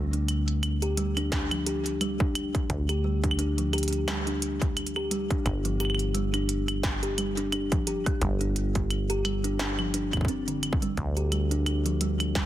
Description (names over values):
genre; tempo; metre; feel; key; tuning
IDM; 87 BPM; 4/4; swing 56% on 16ths; unclear; A4 = 440 Hz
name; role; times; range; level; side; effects
kalimba; arpeggios; 0.0-12.5 s; D3 to G4; -30 LUFS; equal; digital delay
deep acid bass; bass; 0.0-12.5 s; G1 to D2; -29 LUFS; equal; none
industrial drum kit; drums; 0.1-12.5 s; claves, hi-hat, snare drum; -32 LUFS; right 1 dB; none
electronic kick drum; drums; 1.3-12.5 s; none; -28 LUFS; equal; distortion
room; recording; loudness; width
light reverb; dense, heavily limited modern master; -25 LUFS; side -13 dB against mid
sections
0.0-12.5 A section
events
none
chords
0.0 N.C.; 5.5 G5; 11.0 N.C.